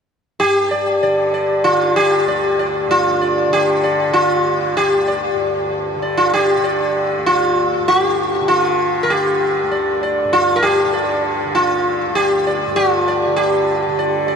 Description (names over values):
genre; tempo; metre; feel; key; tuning
indian classical, Hindustani; 97 BPM; 7/4; straight; unclear; A4 = 440 Hz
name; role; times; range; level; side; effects
sitar; melody; 0.4-14.4 s; F4 to D5; -14 LUFS; equal; ping-pong delay
tanpura; drone; 0.4-14.4 s; D2 to D3; -25 LUFS; right 1 dB; none
room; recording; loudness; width
wet huge ambient reverb, RT60 7.3 s; dreamy mix soaked in reverb; -14 LUFS; side -6 dB against mid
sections
0.4-14.4 A section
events
speeding up 0.4-14.4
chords
none